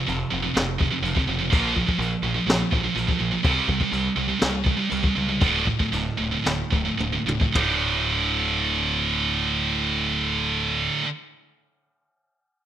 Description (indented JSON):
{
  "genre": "heavy metal",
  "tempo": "106-125 BPM",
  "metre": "4/4",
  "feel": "straight",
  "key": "D minor",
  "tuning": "A4 = 439 Hz",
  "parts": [
    { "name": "heavy high-gain guitar", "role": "riff", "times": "0.0-11.1 s", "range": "D2 to C4", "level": "-30 LUFS", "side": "left 14 dB", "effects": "distortion" },
    { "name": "high-gain distorted guitar", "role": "riff", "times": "0.0-11.1 s", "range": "D2 to C4", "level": "-23 LUFS", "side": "right 5 dB", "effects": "distortion" },
    { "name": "growling picked electric bass", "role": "bass", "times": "0.1-10.9 s", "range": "D1 to C#2", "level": "-30 LUFS", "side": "left 1 dB", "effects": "overdrive" },
    { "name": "jazz brush drum kit", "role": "drums", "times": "0.1-7.7 s", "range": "china cymbal, kick drum, ride cymbal, snare drum, toms", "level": "-25 LUFS", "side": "left 1 dB", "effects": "none" }
  ],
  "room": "light reverb, small room ambience",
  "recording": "rough home demo mix",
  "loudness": "-21 LUFS",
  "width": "side -10 dB against mid",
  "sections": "0.0-7.5 A section; 7.5-12.1 B section",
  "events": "slowing down 3.5-7.5; drum fill 7.0-7.5",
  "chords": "0.0 F5; 1.5 Bb5; 3.5 C5; 5.4 D5"
}